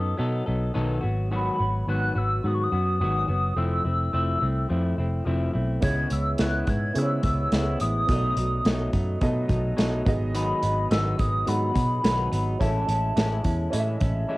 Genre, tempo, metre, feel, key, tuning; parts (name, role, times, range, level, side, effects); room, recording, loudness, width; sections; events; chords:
indie pop, bedroom pop; 106 BPM; 4/4; swing 60% on 16ths; A4 = 440 Hz
hollow clarinet-like synth lead; melody; 0.0-14.3 s; A5 to G#6; -29 LUFS; equal; analog chorus, cassette tape, plate reverb
semi-hollow electric guitar; accompaniment; 0.0-14.4 s; G#2 to A4; -30 LUFS; left 2 dB; wide subtle chorus, warbly pitch drift, plate reverb
vintage muted picked electric bass; bass; 0.0-14.2 s; F1 to C#3; -26 LUFS; equal
dark upright piano; accompaniment; 5.8-14.4 s; B3 to A5; -31 LUFS; right 2 dB; plate reverb
unplugged drum kit; drums; 5.8-14.2 s; hi-hat, kick drum, snare drum; -26 LUFS; equal; cassette tape
light reverb; home recording on cassette; -22 LUFS; side -20 dB against mid
0.0-14.4 A section
upright piano fill 14.0-14.4
0.0 B7; 1.0 G#m7; 3.6 Fmaj7; 5.8 C#m7; 8.1 B7; 10.1 G#m7; 12.6 Amaj7